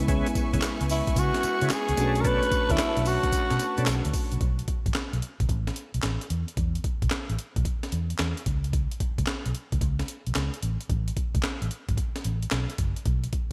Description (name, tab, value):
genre	R&B, new jack swing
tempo	111 BPM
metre	4/4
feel	swing 67% on 16ths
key	unclear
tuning	A4 = 440 Hz
part	mellow tine electric piano	accompaniment	0.0-4.4 s	G#3 to F#4	-35 LUFS	equal	none
part	rich studio string section	sustained chords	0.0-4.4 s	B4 to C#6	-38 LUFS	equal	none
part	vintage muted fingered electric bass	bass	0.0-13.3 s	F#1 to C#3	-30 LUFS	equal	none
part	tonewheel organ	stabs	0.1-3.9 s	B3 to A4	-37 LUFS	equal	chorus vibrato, slow rotary speaker
part	breakbeat sampler-style drum kit	drums	0.1-13.5 s	handclaps, hi-hat, kick drum, snare drum, tambourine	-31 LUFS	equal	gated reverb
part	tube shaker	percussion	0.1-4.4 s	none	-48 LUFS	equal	none
part	growling tenor saxophone	melody	0.9-4.1 s	E4 to B4	-29 LUFS	equal	none
room	light reverb, digital ambience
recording	bright 1980s-style digital production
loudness	-27 LUFS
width	mono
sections	0.0-4.4 A section; 4.4-13.5 B section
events	none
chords	0.0 C#m7; 2.0 Bm9; 4.4 Asus2; 6.3 N.C.